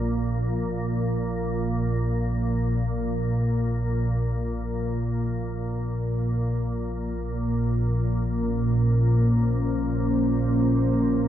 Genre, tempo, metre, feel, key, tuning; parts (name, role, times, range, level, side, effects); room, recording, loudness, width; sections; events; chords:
dark ambient drone; free time; Bb minor; A4 = 440 Hz
organ-like drone; drone; 0.0-11.3 s; Bb1 to Bb2; -23 LUFS; equal; ensemble chorus, built-in reverb
deep dark ambient pad; sustained chords; 7.0-11.3 s; Bb3 to F5; -26 LUFS; left 1 dB; chorus, built-in reverb
wet huge ambient reverb, RT60 7.3 s; -22 LUFS; side -11 dB against mid
0.0-5.5 A section; 5.5-11.3 B section
0.0 N.C.; 5.5 Bbmadd9